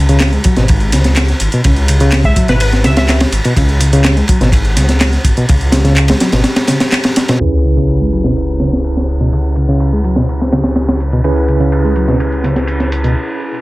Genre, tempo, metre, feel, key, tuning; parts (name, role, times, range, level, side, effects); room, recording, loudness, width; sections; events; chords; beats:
breakbeat, breaks; 125 BPM; 4/4; straight; C# minor; A4 = 439 Hz
reed electric piano; riff; 0.0-13.1 s; B2 to G#3; -16 LUFS; equal; vintage 12-bit sampler grit, low-pass filter, tape echo
dark detuned saw bass; bass; 0.0-13.2 s; G#1 to C#2; -14 LUFS; equal
punchy analog drum machine; drums; 0.1-13.1 s; handclaps, hi-hat; -20 LUFS; equal; low-pass filter on hats, low-pass filter on snare
crunchy breakbeat drum kit; drums; 0.2-13.0 s; kick drum, ride cymbal, snare drum; -15 LUFS; equal; low-pass filter on kick, low-pass filter on cymbals, low-pass filter on snare, low-pass filter on room
glassy wavetable pluck; melody; 2.3-3.0 s; B4 to E5; -20 LUFS; equal; chorus, telephone sound, tape echo
tine electric piano; stabs; 7.4-13.6 s; C#4 to B4; -19 LUFS; right 2 dB; medium stereo tremolo, low-pass filter, tape echo
sub drop; sound effects; 7.4-9.3 s; -20 LUFS; equal
light reverb; low-pass filter; -10 LUFS; side -19 dB against mid
0.0-7.4 A section; 7.4-13.6 B section
impact 7.4-9.3; filter sweep on drum 7.4-13.6; filter sweep on reed electric piano 7.4-13.6; filter sweep 7.4-13.6; break 13.2-13.6
0.0 C#5; 7.4 C#m7
0.20 0.69 1.17 | 1.65 2.12 2.60 3.08 | 3.56 4.04 4.53 5.00 | 5.49 5.96 6.45 6.92 | 7.41 7.88 8.37 8.85 | 9.32 9.80 10.29 10.77 | 11.24 11.72 12.21 12.69 | 13.16